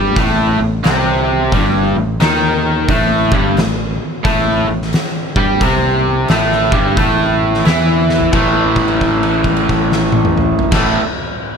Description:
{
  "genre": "blues rock power trio and southern rock",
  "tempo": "88 BPM",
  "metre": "4/4",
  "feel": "swing 63% on 8ths",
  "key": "unclear",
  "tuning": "A4 = 440 Hz",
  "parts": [
    { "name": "raw garage guitar", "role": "riff", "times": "0.0-11.0 s", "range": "G2 to G4", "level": "-14 LUFS", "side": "equal", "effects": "overdrive" },
    { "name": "growling fingered electric bass", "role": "bass", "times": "0.0-11.0 s", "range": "G1 to G2", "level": "-19 LUFS", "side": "equal", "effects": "overdrive" },
    { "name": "oversized low-tuned drum kit", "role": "drums", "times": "0.2-10.9 s", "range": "crash cymbal, hi-hat, kick drum, snare drum, toms", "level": "-17 LUFS", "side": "equal", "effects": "none" }
  ],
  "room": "studio reverb",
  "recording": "none",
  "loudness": "-12 LUFS",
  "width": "side -6 dB against mid",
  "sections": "0.0-8.3 A section; 8.3-11.1 B section",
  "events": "drum fill 8.0-8.3; held note 8.3-10.7",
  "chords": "0.0 A5"
}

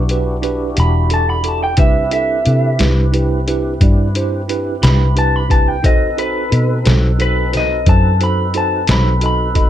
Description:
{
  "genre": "slow blues",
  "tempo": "59 BPM (dotted quarters)",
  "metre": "12/8",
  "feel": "straight",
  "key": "unclear",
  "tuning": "A4 = 440 Hz",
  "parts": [
    { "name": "tine electric piano", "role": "accompaniment", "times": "0.0-9.7 s", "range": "D4 to D#5", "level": "-21 LUFS", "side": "right 5 dB", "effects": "medium stereo tremolo" },
    { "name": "tonewheel organ", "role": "sustained chords", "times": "0.0-9.7 s", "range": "C4 to B4", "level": "-27 LUFS", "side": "left 1 dB", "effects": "slow rotary speaker, overdrive, chorus vibrato" },
    { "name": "vintage muted fingered electric bass", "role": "bass", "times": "0.0-9.7 s", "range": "E1 to C3", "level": "-16 LUFS", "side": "equal", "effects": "none" },
    { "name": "trip hop sampler-style drum kit", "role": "drums", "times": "0.1-9.7 s", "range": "hi-hat, kick drum, snare drum", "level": "-16 LUFS", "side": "equal", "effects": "none" },
    { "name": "electric guitar through a small old amp", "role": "melody", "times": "0.8-9.7 s", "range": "B4 to B5", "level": "-18 LUFS", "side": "left 1 dB", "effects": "none" }
  ],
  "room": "little or no reverb",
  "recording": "none",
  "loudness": "-12 LUFS",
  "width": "side -11 dB against mid",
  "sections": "0.0-9.7 A section",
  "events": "break 0.0-1.8",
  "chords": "0.0 Em9; 1.8 Cmaj7; 5.8 B7b9"
}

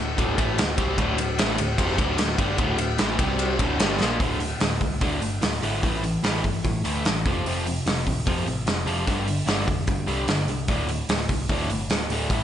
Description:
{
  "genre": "hard rock",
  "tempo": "148 BPM",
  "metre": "4/4",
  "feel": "straight",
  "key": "D minor",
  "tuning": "A4 = 439 Hz",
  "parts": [
    { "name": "crunchy overdriven guitar", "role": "riff", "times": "0.0-12.4 s", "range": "D2 to C4", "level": "-26 LUFS", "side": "equal", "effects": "none" },
    { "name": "overdriven picked electric bass", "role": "bass", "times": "0.0-12.4 s", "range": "D1 to A2", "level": "-29 LUFS", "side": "equal", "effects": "none" },
    { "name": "big rock drum kit", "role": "drums", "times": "0.2-12.4 s", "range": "hi-hat, kick drum, ride cymbal, snare drum", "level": "-24 LUFS", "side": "equal", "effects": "none" }
  ],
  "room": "moderate recital hall reverb, RT60 1.4 s, small room ambience",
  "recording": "nothing above 10.3 kHz",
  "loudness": "-22 LUFS",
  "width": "side -10 dB against mid",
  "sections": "0.0-4.2 A section; 4.2-12.4 B section",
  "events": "drum fill 4.0",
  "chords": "0.0 Dm; 3.2 C5; 3.6 Dm; 4.2 D5; 5.8 A5; 7.3 F5; 9.1 Gsus4; 10.7 D5"
}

